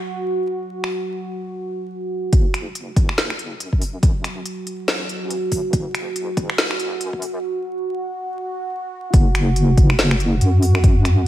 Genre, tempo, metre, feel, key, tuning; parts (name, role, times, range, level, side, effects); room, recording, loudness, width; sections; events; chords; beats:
deep dubstep; 141 BPM; 4/4; swing 58% on 16ths, half-time; F# minor; A4 = 439 Hz
deep dark ambient pad; sustained chords; 0.0-11.3 s; F#4; -26 LUFS; right 2 dB; chorus, built-in reverb
deep house drum kit; drums; 0.8-11.2 s; finger snaps, hi-hat, snare drum; -23 LUFS; left 1 dB; studio reverb
deep soft wobble bass; bass; 2.3-11.2 s; F#1 to F#2; -18 LUFS; equal; chorus, tube saturation, high-pass filter
electronic kick drum; drums; 2.3-10.9 s; -15 LUFS; equal; studio reverb
little or no reverb; vinyl crackle, high-pass filter; -18 LUFS; side -13 dB against mid
0.0-2.3 A section; 2.3-9.1 B section; 9.1-11.3 C section
build-up 2.3-9.1; filter sweep on ambient pad 2.3-9.1; filter sweep 2.3-9.1; break 7.4-9.1; drop 9.1-11.3
0.20 | 0.63 1.05 1.48 1.90 | 2.33 2.75 3.18 3.60 | 4.03 4.46 4.88 5.31 | 5.73 6.16 6.58 7.01 | 7.43 7.86 8.29 8.71 | 9.14 9.56 9.99 10.41 | 10.84 11.26